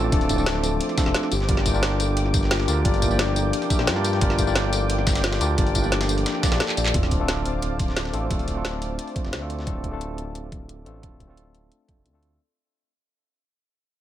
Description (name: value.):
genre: liquid drum and bass.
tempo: 176 BPM.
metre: 4/4.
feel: straight.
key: unclear.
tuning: A4 = 440 Hz.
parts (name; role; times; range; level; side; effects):
tine electric piano; accompaniment; 0.0-12.4 s; F3 to E5; -27 LUFS; equal; medium stereo tremolo, ping-pong delay.
lush unison pad; sustained chords; 0.0-12.4 s; Bb3 to D6; -32 LUFS; equal; chorus, sidechain pumping.
felt-muted upright piano; arpeggios; 0.0-7.0 s; D4 to D5; -31 LUFS; left 6 dB; digital delay.
smooth synth bass; bass; 0.0-12.4 s; D1 to G2; -26 LUFS; equal; none.
drum and bass drum kit; drums; 0.1-12.3 s; handclaps, hi-hat, snare drum, tambourine; -27 LUFS; equal; none.
dusty soul sampler-style drum kit; drums; 0.1-9.7 s; hi-hat, snare drum; -33 LUFS; right 1 dB; high-pass filter on hats, high-pass filter on snare, high-pass filter on room.
electronic kick drum; drums; 0.1-12.0 s; none; -24 LUFS; equal; overdrive.
sub drop; sound effects; 6.9-8.3 s; none; -32 LUFS; right 1 dB; none.
room: digital ambience.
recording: none.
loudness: -20 LUFS.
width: side -12 dB against mid.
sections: 0.0-6.9 A section; 6.9-12.4 B section.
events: drop 0.0-6.9; kick drops out 6.6-6.9; drum fill 6.7; fade-out 6.9-12.4; impact 6.9-8.3.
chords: 0.0 Dm7; 1.3 Gm7; 6.9 Dm7.